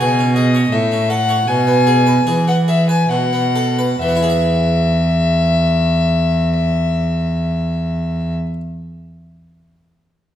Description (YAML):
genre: classical, baroque-style sonata movement with continuo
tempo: 65-84 BPM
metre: 3/4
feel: rubato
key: E major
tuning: A4 = 443 Hz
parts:
  - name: warm violin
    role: melody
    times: 0.0-8.3 s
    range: D#5 to G#5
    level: -18 LUFS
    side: left 5 dB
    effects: none
  - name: harpsichord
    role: accompaniment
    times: 0.0-8.6 s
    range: A2 to E5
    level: -21 LUFS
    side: right 2 dB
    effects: none
  - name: rich cello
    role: bass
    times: 0.0-8.3 s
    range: E2 to E3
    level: -16 LUFS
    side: right 2 dB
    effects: none
room: wet recital hall reverb, RT60 1.7 s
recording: none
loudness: -13 LUFS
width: side -10 dB against mid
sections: 0.0-4.0 A section; 4.0-9.4 B section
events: slowing down 0.0-4.0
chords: 0.0 C#5; 0.7 A; 1.5 E/B; 3.1 B5; 4.0 E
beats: 0.00 0.72 | 1.48 2.27 3.10 | 4.01 4.90 5.81 | 6.71 7.62 8.52